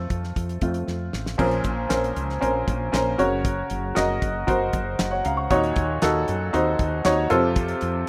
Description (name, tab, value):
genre	piano-driven pop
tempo	117 BPM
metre	4/4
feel	straight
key	Bb harmonic minor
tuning	A4 = 439 Hz
part	bright upright piano	accompaniment	0.0-8.1 s	Bb2 to Db6	-25 LUFS	equal	none
part	woody fretless electric bass	bass	0.0-8.0 s	Gb1 to Gb2	-31 LUFS	equal	none
part	damped 70s drum kit	drums	0.1-7.9 s	crash cymbal, handclaps, hi-hat, kick drum, snare drum	-30 LUFS	equal	none
room	light reverb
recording	rough home demo mix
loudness	-23 LUFS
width	mono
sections	0.0-1.4 A section; 1.4-8.1 B section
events	upright piano solo 0.0-1.4; drum fill 0.9-1.4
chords	0.0 F; 1.4 Bbmadd9; 3.2 Gb; 5.5 Ebm7; 7.3 F